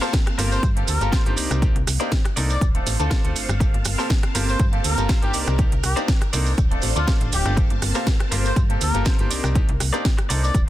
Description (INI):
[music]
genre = filtered disco house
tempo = 121 BPM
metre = 4/4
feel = swing 53% on 16ths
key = G minor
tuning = A4 = 441 Hz
[part]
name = bright baby grand piano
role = accompaniment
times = 0.0-10.5 s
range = A3 to D5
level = -29 LUFS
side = equal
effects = phaser, sidechain pumping
[part]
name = string machine, full ensemble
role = sustained chords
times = 0.0-10.7 s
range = Bb3 to A5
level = -32 LUFS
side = equal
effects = phaser, ensemble chorus, sidechain pumping
[part]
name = direct-recorded clean electric guitar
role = riff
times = 0.0-10.7 s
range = Eb4 to D5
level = -31 LUFS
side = left 3 dB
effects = sidechain pumping
[part]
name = maracas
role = percussion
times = 0.0-10.7 s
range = none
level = -32 LUFS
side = right 6 dB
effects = sidechain pumping on perc
[part]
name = electronic kick drum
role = drums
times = 0.1-10.7 s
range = none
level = -20 LUFS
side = equal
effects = none
[part]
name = house drum kit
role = drums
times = 0.1-10.7 s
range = hi-hat, rim click, snare drum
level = -28 LUFS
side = right 2 dB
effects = sidechain pumping on hats, sidechain pumping on cymbals
[part]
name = slap-like FM bass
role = bass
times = 0.4-10.7 s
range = D1 to G2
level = -23 LUFS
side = equal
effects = tube saturation, sidechain pumping
[part]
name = muted trumpet section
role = melody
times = 0.5-10.6 s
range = F4 to D5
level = -29 LUFS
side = left 1 dB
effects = sidechain pumping, digital delay
[sound]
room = little or no reverb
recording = dense, heavily limited modern master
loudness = -18 LUFS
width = side -14 dB against mid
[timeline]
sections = 0.0-10.7 A section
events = none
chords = 0.0 Gm11; 1.4 Cm9; 2.6 Dm7; 3.6 Gm11; 5.3 Cm9; 6.6 Dm7; 7.6 Gm11; 9.3 Cm9